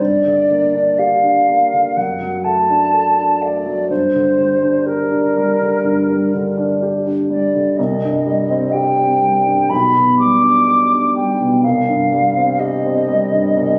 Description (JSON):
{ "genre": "classical, romantic duo for flute and grand piano", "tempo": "62 BPM", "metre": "4/4", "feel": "rubato", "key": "unclear", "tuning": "A4 = 440 Hz", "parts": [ { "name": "mellow hollow silver concert flute", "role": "melody", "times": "0.0-13.8 s", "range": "Bb4 to D6", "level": "-18 LUFS", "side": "equal", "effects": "none" }, { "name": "warm concert grand piano", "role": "accompaniment", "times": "0.0-13.8 s", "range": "B1 to A4", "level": "-20 LUFS", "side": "equal", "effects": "none" } ], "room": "wet recital hall reverb, RT60 1.3 s", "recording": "recorded on a phone in the room, club reverb", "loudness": "-16 LUFS", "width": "mono", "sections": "0.0-13.8 A section", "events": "none", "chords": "0.0 Gm; 2.0 D/F#; 3.9 Gm; 7.8 Cm; 9.7 G/B; 11.6 Cm" }